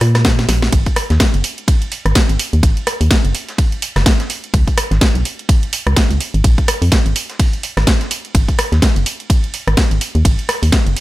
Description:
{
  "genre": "piano house",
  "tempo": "126 BPM",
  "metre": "4/4",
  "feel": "swing 58% on 16ths",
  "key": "G# dorian",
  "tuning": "A4 = 438 Hz",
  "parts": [
    { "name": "organ-like FM bass", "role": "bass", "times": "0.0-10.9 s", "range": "F#1 to A#2", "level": "-14 LUFS", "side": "equal", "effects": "sidechain pumping" },
    { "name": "breakbeat sampler-style drum kit", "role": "drums", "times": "0.0-11.0 s", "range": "hi-hat, snare drum", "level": "-29 LUFS", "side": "right 1 dB", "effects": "none" },
    { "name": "house drum kit", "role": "drums", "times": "0.0-11.0 s", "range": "hi-hat, ride cymbal, rim click, snare drum", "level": "-18 LUFS", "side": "equal", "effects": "none" },
    { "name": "electronic kick drum", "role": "drums", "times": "0.2-10.8 s", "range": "none", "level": "-14 LUFS", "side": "equal", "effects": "none" }
  ],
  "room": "digital ambience",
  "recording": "none",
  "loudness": "-13 LUFS",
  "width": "side -17 dB against mid",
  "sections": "0.0-11.0 A section",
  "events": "drum fill 0.4-0.7",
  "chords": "none"
}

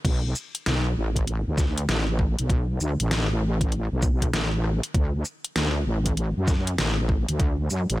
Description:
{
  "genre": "glitch hop",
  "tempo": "98 BPM",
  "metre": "4/4",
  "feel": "swing 64% on 16ths",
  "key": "B minor",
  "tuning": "A4 = 439 Hz",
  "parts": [
    { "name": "wobble bass", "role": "bass", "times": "0.0-8.0 s", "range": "A1 to F#2", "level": "-24 LUFS", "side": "equal", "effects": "chorus, overdrive" },
    { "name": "electronic kick drum", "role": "drums", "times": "0.0-7.6 s", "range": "none", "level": "-24 LUFS", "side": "equal", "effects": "overdrive" },
    { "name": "pop drum kit", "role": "drums", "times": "0.0-8.0 s", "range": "crash cymbal, hi-hat, rim click, shaker, snare drum", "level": "-28 LUFS", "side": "left 1 dB", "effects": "overdrive" }
  ],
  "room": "little or no reverb",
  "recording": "none",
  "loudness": "-22 LUFS",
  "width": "side -17 dB against mid",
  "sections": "0.0-8.0 A section",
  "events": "none",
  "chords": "none"
}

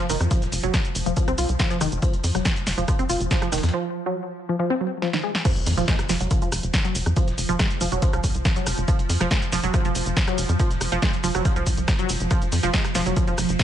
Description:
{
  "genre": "driving peak-time techno",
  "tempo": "140 BPM",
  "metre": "4/4",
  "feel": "straight",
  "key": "unclear",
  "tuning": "A4 = 440 Hz",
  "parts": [
    { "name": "tight sequenced synth", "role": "riff", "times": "0.0-13.3 s", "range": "Eb3 to F4", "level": "-26 LUFS", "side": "right 1 dB", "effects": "chorus, tube saturation, sidechain pumping, ping-pong delay" },
    { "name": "swarming drone", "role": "drone", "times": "0.0-13.6 s", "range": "F3", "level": "-32 LUFS", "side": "right 3 dB", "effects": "built-in reverb, sidechain pumping" },
    { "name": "tight sequencer bass", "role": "bass", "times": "0.1-13.6 s", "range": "Eb1 to F2", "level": "-26 LUFS", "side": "equal", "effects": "sidechain pumping" },
    { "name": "dusty soul sampler-style drum kit", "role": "drums", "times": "0.1-13.6 s", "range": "hi-hat, snare drum", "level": "-39 LUFS", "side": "left 1 dB", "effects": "none" },
    { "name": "punchy analog drum machine", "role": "drums", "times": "0.1-13.6 s", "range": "crash cymbal, hi-hat, rim click, shaker, snare drum", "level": "-27 LUFS", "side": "equal", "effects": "studio reverb" },
    { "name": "electronic kick drum", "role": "drums", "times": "0.3-13.6 s", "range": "none", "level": "-22 LUFS", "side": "equal", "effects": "studio reverb" },
    { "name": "impact", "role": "sound effects", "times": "5.5-7.2 s", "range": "none", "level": "-33 LUFS", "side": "equal", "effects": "none" }
  ],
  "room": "little or no reverb",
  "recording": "nothing above 10.9 kHz",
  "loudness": "-20 LUFS",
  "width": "side -10 dB against mid",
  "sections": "0.0-5.5 A section; 5.5-13.6 B section",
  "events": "break 3.7-5.5; drum fill 5.0-5.5; drop 5.5-13.6; impact 5.5-7.2",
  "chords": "none"
}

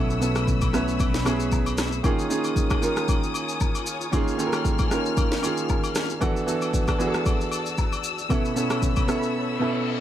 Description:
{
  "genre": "amapiano",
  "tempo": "115 BPM",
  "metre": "4/4",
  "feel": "swing 55% on 16ths",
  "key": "unclear",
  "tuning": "A4 = 440 Hz",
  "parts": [
    { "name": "clear concert grand piano", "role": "accompaniment", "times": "0.0-10.0 s", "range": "B2 to B4", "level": "-25 LUFS", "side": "right 2 dB", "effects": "none" },
    { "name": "dark studio string section", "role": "sustained chords", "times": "0.0-10.0 s", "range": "A3 to F6", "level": "-31 LUFS", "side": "left 4 dB", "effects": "sidechain pumping" },
    { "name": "fingered electric bass", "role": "bass", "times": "0.0-2.0 s", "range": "B1", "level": "-28 LUFS", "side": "left 1 dB", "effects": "none" },
    { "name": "afro-pop drum kit", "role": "drums", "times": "0.1-9.3 s", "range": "kick drum, rim click, shaker, snare drum", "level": "-25 LUFS", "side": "equal", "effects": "none" },
    { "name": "agogo bells and woodblock", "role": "percussion", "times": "0.4-9.1 s", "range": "none", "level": "-36 LUFS", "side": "left 6 dB", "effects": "none" },
    { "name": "reverse cymbal", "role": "sound effects", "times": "9.5-10.0 s", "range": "none", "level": "-33 LUFS", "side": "left 5 dB", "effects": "none" }
  ],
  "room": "little or no reverb",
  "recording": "none",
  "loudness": "-22 LUFS",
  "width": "side -11 dB against mid",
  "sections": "0.0-10.0 A section",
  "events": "reverse cymbal 9.5-10.0",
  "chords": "0.0 B9sus4; 2.0 Eb9sus4; 6.2 E9sus4; 8.3 B9sus4"
}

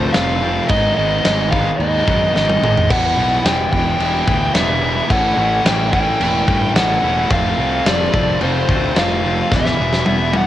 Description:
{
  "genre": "quiet-loud alternative rock",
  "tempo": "109 BPM",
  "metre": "4/4",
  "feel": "straight",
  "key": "unclear",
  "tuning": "A4 = 441 Hz",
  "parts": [
    { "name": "dark smooth lead guitar", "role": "melody", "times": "0.0-10.5 s", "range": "C5 to G5", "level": "-19 LUFS", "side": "equal", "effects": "overdrive" },
    { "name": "sludgy distorted guitar", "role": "riff", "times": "0.0-10.5 s", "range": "E2 to A3", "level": "-23 LUFS", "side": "right 6 dB", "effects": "overdrive, cassette tape" },
    { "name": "tight distorted guitar", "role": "riff", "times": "0.0-10.5 s", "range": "G#2 to F4", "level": "-22 LUFS", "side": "left 7 dB", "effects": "distortion, cassette tape" },
    { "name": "fuzz fingered electric bass", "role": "bass", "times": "0.0-10.5 s", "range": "E1 to G2", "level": "-22 LUFS", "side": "equal", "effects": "overdrive" },
    { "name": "big rock drum kit", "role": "drums", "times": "0.1-10.5 s", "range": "crash cymbal, kick drum, snare drum, toms", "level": "-19 LUFS", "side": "equal", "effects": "cassette tape" }
  ],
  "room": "little or no reverb",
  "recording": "home recording on cassette",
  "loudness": "-14 LUFS",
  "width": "side -12 dB against mid",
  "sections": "0.0-10.5 A section",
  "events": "drum fill 2.3-2.9, 9.5-10.5",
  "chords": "0.0 F; 0.7 G#m; 2.9 Em; 5.1 A; 7.3 F; 9.5 Em"
}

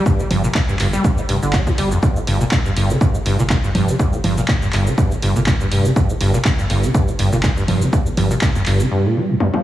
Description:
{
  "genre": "acid house",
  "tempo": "122 BPM",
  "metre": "4/4",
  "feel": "swing 55% on 16ths",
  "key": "G minor",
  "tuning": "A4 = 440 Hz",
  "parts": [
    { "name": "acid bass, saw", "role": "riff", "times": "0.0-9.6 s", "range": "F2 to G3", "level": "-18 LUFS", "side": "equal", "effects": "overdrive, ensemble chorus, sidechain pumping, analog delay" },
    { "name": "electronic kick drum", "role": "drums", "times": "0.1-8.5 s", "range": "none", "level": "-18 LUFS", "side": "equal", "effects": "none" },
    { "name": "punchy analog drum machine", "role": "drums", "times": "0.1-9.6 s", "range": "congas, handclaps, hi-hat, shaker, toms", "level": "-23 LUFS", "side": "right 1 dB", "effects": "none" },
    { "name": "round analog bass", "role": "bass", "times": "0.3-8.8 s", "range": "F1 to G1", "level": "-22 LUFS", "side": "equal", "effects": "sidechain pumping" }
  ],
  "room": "light reverb, digital ambience",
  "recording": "heavily compressed radio sound, multiband compression, studio ambience",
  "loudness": "-15 LUFS",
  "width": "side -13 dB against mid",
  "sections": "0.0-9.6 A section",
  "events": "drum fill 9.4",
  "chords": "0.0 Gm"
}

